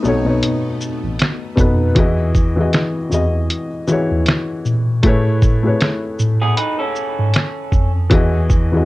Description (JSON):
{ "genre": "lo-fi hip hop", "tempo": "78 BPM", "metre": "4/4", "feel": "swing 58% on 16ths", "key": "E major", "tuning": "A4 = 439 Hz", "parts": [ { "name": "dark upright piano", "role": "accompaniment", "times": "0.0-8.8 s", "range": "B2 to D#5", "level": "-18 LUFS", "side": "left 2 dB", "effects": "plate reverb" }, { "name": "string machine, violins", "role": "sustained chords", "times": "0.0-1.9 s", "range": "A3 to D#4", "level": "-30 LUFS", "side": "left 1 dB", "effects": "ensemble chorus, plate reverb" }, { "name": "mellow tine electric piano", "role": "bass", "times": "0.0-8.8 s", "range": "A1 to A#2", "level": "-18 LUFS", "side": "equal", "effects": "medium stereo tremolo" }, { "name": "lo-fi sampler-style drum kit", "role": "drums", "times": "0.0-8.7 s", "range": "finger snaps, hi-hat, kick drum, shaker, snare drum", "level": "-16 LUFS", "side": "equal", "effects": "vintage 12-bit sampler grit" }, { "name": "electric guitar through a small old amp", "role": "second line", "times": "6.4-7.9 s", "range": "B3 to B4", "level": "-23 LUFS", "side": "right 2 dB", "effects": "tape echo, plate reverb" } ], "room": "light reverb", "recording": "cassette tape", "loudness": "-14 LUFS", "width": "side -18 dB against mid", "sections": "0.0-2.0 A section; 2.0-8.8 B section", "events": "none", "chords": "0.0 B9; 2.0 Emaj9; 5.0 Amaj9; 8.1 Emaj9" }